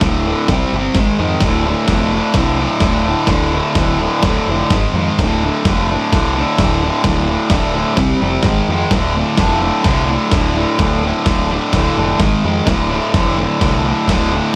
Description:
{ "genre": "garage rock duo or trio", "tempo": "128 BPM", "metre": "4/4", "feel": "straight", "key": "D minor", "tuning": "A4 = 440 Hz", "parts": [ { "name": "fuzz guitar", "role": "riff", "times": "0.0-14.5 s", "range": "D2 to C4", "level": "-18 LUFS", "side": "equal", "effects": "distortion" }, { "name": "growling picked electric bass", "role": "bass", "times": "0.0-14.4 s", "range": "D1 to F2", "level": "-23 LUFS", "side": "equal", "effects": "overdrive" }, { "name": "dusty soul sampler-style drum kit", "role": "drums", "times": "0.0-14.2 s", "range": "crash cymbal, kick drum, snare drum", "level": "-21 LUFS", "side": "equal", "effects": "none" } ], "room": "light reverb", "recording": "none", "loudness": "-15 LUFS", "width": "mono", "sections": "0.0-14.6 A section", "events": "none", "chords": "0.5 C5; 1.0 G#5; 1.4 Dm; 4.7 G#5; 5.2 D5; 8.0 C5; 8.5 G#5; 8.9 Dm; 12.2 G#5; 12.7 Dm" }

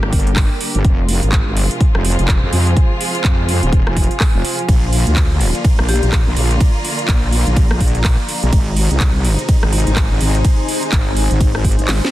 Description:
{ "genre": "bass house", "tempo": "125 BPM", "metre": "4/4", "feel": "swing 59% on 16ths", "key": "unclear", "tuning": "A4 = 441 Hz", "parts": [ { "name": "rich studio string section", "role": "sustained chords", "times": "0.0-12.1 s", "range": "C3 to G4", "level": "-25 LUFS", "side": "left 1 dB", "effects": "sidechain pumping" }, { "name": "wobble bass", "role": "bass", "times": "0.0-12.0 s", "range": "Eb1 to F2", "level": "-16 LUFS", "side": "equal", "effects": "chorus, overdrive, sidechain pumping" }, { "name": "house drum kit", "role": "drums", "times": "0.0-12.1 s", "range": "handclaps, hi-hat, ride cymbal, rim click, snare drum", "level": "-22 LUFS", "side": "right 1 dB", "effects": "soft clipping on snare" }, { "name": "ethereal airy pad", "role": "texture", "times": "0.0-12.1 s", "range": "D4 to Bb5", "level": "-25 LUFS", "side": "right 1 dB", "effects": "ensemble chorus, built-in reverb, sidechain pumping" }, { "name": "electronic kick drum", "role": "drums", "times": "0.1-11.8 s", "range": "none", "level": "-14 LUFS", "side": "equal", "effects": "none" }, { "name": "vibraphone with medium mallets", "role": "melody", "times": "5.9-6.0 s", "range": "G4", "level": "-24 LUFS", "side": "left 8 dB", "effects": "digital delay" } ], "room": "little or no reverb", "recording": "dense, heavily limited modern master", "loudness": "-13 LUFS", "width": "side -15 dB against mid", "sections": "0.0-12.1 A section", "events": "kick drops out 11.9; drum fill 11.9", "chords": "0.0 Gm; 0.8 Fm; 4.7 Bb; 8.5 Ab" }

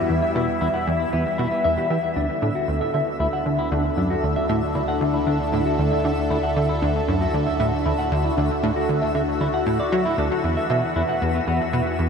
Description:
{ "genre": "ambient, sequencer-driven space music", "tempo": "116 BPM", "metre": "4/4", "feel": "straight", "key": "D major", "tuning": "A4 = 440 Hz", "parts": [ { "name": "phased analog pad", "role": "sustained chords", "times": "0.0-12.1 s", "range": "D3 to E5", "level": "-24 LUFS", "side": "left 1 dB", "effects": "phaser, chorus" }, { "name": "semi-hollow electric guitar", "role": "arpeggios", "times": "0.0-12.0 s", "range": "B3 to F#5", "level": "-27 LUFS", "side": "right 2 dB", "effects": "auto-pan, ping-pong delay" }, { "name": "plucky analog bass", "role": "riff", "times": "0.0-12.1 s", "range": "D2 to F#3", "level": "-24 LUFS", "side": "equal", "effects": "wide subtle chorus, ping-pong delay" }, { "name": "warm sub bass", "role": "bass", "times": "0.0-12.1 s", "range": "D2 to E2", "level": "-32 LUFS", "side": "equal", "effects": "none" }, { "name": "twinkling granular texture", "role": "texture", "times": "0.0-12.1 s", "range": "E4 to E5", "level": "-33 LUFS", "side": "right 1 dB", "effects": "built-in reverb" } ], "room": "wet huge ambient reverb, RT60 9.2 s", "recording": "in a vast, echoing space", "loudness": "-20 LUFS", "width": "side -6 dB against mid", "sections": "0.0-12.1 A section", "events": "fade-in on synth texture 0.0-12.1", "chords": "0.0 Em; 2.2 Dadd9; 10.4 Esus2" }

